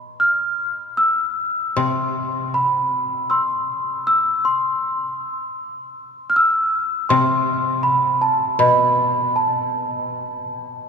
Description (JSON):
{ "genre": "japanese traditional, Japanese chamber music", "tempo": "78 BPM", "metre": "4/4", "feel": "uneven beats, rubato", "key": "unclear", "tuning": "A4 = 440 Hz", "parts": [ { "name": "celesta", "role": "melody", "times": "0.2-10.9 s", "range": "A5 to F6", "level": "-18 LUFS", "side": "equal", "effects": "none" }, { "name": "koto", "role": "accompaniment", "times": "1.8-10.9 s", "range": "B2 to C3", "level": "-24 LUFS", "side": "left 2 dB", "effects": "none" } ], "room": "wet cathedral reverb, RT60 5.7 s", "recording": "recorded in a church or concert hall", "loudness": "-17 LUFS", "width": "side -6 dB against mid", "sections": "0.0-10.9 A section", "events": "none", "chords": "none" }